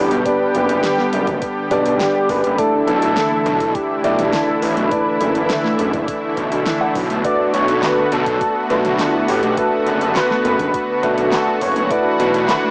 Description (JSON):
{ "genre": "synthwave", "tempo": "103 BPM", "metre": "4/4", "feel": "straight", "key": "B minor", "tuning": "A4 = 441 Hz", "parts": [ { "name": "unison lead", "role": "melody", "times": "0.0-12.7 s", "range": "F#4 to D5", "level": "-23 LUFS", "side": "equal", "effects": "cassette tape, tape echo" }, { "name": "lush unison pad", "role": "sustained chords", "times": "0.0-12.7 s", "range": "D3 to G4", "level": "-23 LUFS", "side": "equal", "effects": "chorus, sidechain pumping" }, { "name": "warm baby grand piano", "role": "stabs", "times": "0.0-12.7 s", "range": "A3 to F#5", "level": "-23 LUFS", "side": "equal", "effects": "none" }, { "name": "detuned saw bass", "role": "bass", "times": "0.0-12.5 s", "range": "F#1 to B1", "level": "-24 LUFS", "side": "equal", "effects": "chorus" }, { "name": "soft round pluck", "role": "arpeggios", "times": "0.1-12.7 s", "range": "A3 to G5", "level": "-31 LUFS", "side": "equal", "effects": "none" }, { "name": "pop drum kit", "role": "drums", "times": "0.1-12.6 s", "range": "handclaps, hi-hat, snare drum, toms", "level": "-28 LUFS", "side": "equal", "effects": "studio reverb, cassette tape" }, { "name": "electronic kick drum", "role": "drums", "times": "0.3-12.0 s", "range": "none", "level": "-37 LUFS", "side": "equal", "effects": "studio reverb, cassette tape" } ], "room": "light reverb", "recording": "home recording on cassette, small speaker sound", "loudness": "-18 LUFS", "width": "mono", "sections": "0.0-12.7 A section", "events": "none", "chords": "0.0 G; 2.6 Asus4; 7.2 Bm7; 11.9 Dadd9", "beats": "| 0.26 0.84 1.42 2.00 | 2.58 3.17 3.75 4.33 | 4.92 5.50 6.08 6.66 | 7.25 7.83 8.41 8.99 | 9.58 10.16 10.74 11.32 | 11.91 12.49" }